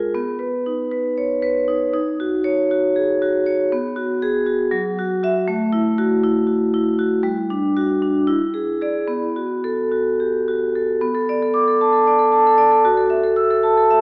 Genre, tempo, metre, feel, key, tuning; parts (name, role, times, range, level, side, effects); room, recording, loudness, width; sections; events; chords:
classical, contemporary piece for solo vibraphone; 233 BPM (eighths); 7/8; rubato; B minor from 3.7 s; A4 = 441 Hz
vibraphone with medium hard mallets; solo; 0.0-14.0 s; F#3 to E6; -16 LUFS; equal
wet recital hall reverb, RT60 1.4 s; heard from further back in the room, AM radio sound; -16 LUFS; side -30 dB against mid
0.0-11.0 A section; 11.0-14.0 B section
0.1 Badd9; 1.9 D#m7; 3.7 B5; 4.7 Esus2/F#; 5.5 A5; 7.2 G5; 8.3 E7; 9.1 B5; 11.0 Bm7; 12.8 F#m7